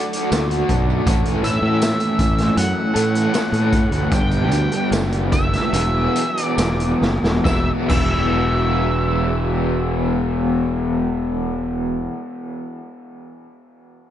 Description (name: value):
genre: psychedelic rock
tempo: 68-80 BPM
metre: 4/4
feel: straight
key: E mixolydian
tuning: A4 = 440 Hz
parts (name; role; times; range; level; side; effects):
- ensemble organ-string; sustained chords; 0.0-11.6 s; E3 to B4; -31 LUFS; right 3 dB; none
- raw garage guitar; riff; 0.0-12.1 s; E2 to A4; -22 LUFS; left 1 dB; overdrive, tremolo, tape echo
- raw garage drum kit; drums; 0.1-8.1 s; crash cymbal, hi-hat, kick drum, snare drum; -22 LUFS; equal; none
- fuzz fingered electric bass; bass; 0.3-12.1 s; E1 to A2; -21 LUFS; equal; overdrive
- tambourine; percussion; 0.3-8.1 s; none; -42 LUFS; right 12 dB; none
- octave-fuzz lead guitar; melody; 1.4-11.8 s; E5 to G5; -25 LUFS; equal; distortion, tape echo
room: little or no reverb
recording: echo-heavy mix, nothing above 10.8 kHz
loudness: -16 LUFS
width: side -11 dB against mid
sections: 0.0-7.5 A section; 7.5-11.0 B section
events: slowing down 1.1-7.5; drum fill 7.0-7.5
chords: 0.0 D; 1.1 A; 4.1 G; 5.7 Eadd9